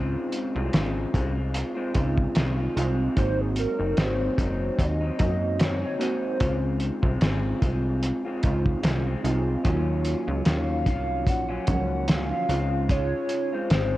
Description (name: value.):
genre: indie pop, bedroom pop.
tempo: 74 BPM.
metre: 4/4.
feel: swing 55% on 16ths.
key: Db major.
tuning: A4 = 438 Hz.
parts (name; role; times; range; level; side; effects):
warbly nostalgic lead; melody; 0.0-14.0 s; Ab4 to Gb5; -30 LUFS; equal; analog chorus.
electric guitar through a small old amp; accompaniment; 0.0-14.0 s; Ab2 to F4; -30 LUFS; left 2 dB; lush chorus, warbly pitch drift.
warbly lo-fi synth keys; accompaniment; 0.0-14.0 s; F3 to Gb4; -32 LUFS; right 3 dB; chorus, cassette tape.
plucky analog bass; bass; 0.0-14.0 s; Gb1 to Gb2; -27 LUFS; equal; tube saturation.
cloth-damped thuddy drum kit; drums; 0.3-13.9 s; hi-hat, kick drum, snare drum; -26 LUFS; equal; none.
room: little or no reverb.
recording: worn, warbling old tape, cassette tape, warbly pitch drift.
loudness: -23 LUFS.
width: side -16 dB against mid.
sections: 0.0-14.0 A section.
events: none.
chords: 0.0 Dbmaj7; 3.2 Ab7; 6.4 Dbmaj7; 9.7 Ebm9; 12.5 Dbmaj7.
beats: 0.73 1.54 2.36 | 3.17 3.98 4.79 5.60 | 6.41 7.22 8.03 8.84 | 9.65 10.46 11.28 12.09 | 12.90 13.71.